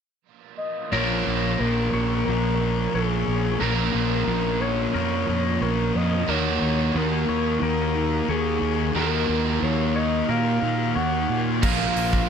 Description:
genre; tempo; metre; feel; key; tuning
rock, shoegaze and dream pop; 90 BPM; 4/4; straight; unclear; A4 = 441 Hz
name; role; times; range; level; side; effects
reedy FM lead; melody; 0.6-12.3 s; Ab4 to Gb5; -28 LUFS; left 2 dB; chorus, slapback echo
soft string machine; sustained chords; 1.6-12.3 s; Gb4 to F6; -36 LUFS; equal; ensemble chorus
twangy electric guitar; arpeggios; 0.9-12.3 s; Bb4 to Db5; -33 LUFS; left 6 dB; lush chorus, slapback echo
raw garage guitar; riff; 0.9-12.3 s; Bb2 to Bb4; -27 LUFS; right 12 dB; overdrive, reverse reverb
thick fuzz guitar; riff; 0.9-12.3 s; Bb2 to Eb4; -27 LUFS; left 10 dB; distortion, analog chorus
fuzz fingered electric bass; bass; 0.9-12.2 s; Bb1 to Bb2; -26 LUFS; equal; overdrive
big rock drum kit; drums; 11.6-12.3 s; crash cymbal, hi-hat, kick drum; -23 LUFS; equal; none
room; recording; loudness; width
moderate studio reverb, RT60 0.6 s; none; -21 LUFS; side -7 dB against mid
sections
0.9-11.6 A section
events
none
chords
0.0 N.C.; 0.9 Bbm; 6.3 Ebmadd9; 11.6 Bbm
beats
0.25 | 0.92 1.59 2.26 2.93 | 3.60 4.27 4.94 5.61 | 6.28 6.95 7.62 8.29 | 8.96 9.63 10.29 10.96 | 11.63

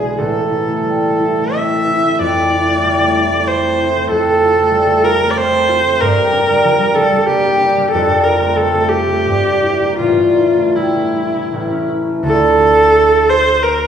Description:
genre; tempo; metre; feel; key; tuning
classical, romantic duo for viola and harp; 76-98 BPM; 3/4; rubato; D minor from 4.1 s; A4 = 440 Hz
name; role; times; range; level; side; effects
clear viola; melody; 0.0-13.9 s; E4 to E5; -13 LUFS; right 1 dB; none
concert harp; accompaniment; 0.0-13.9 s; A1 to A4; -16 LUFS; equal; none
room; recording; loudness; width
wet recital hall reverb, RT60 1.5 s; heard from further back in the room, small room ambience; -11 LUFS; side -8 dB against mid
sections
0.0-12.3 A section; 12.3-13.9 B section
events
none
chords
0.2 Am; 2.2 Fmaj7; 4.1 F; 6.0 Gm; 7.9 Dm/F; 9.3 Em7b5/G; 10.0 Asus4; 11.5 A; 12.3 Dm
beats
| 0.21 0.86 1.56 | 2.21 2.85 3.49 | 4.12 4.74 5.37 | 6.00 6.63 7.27 | 7.92 8.56 9.25 | 9.99 10.76 11.52 | 12.26 12.94 13.62

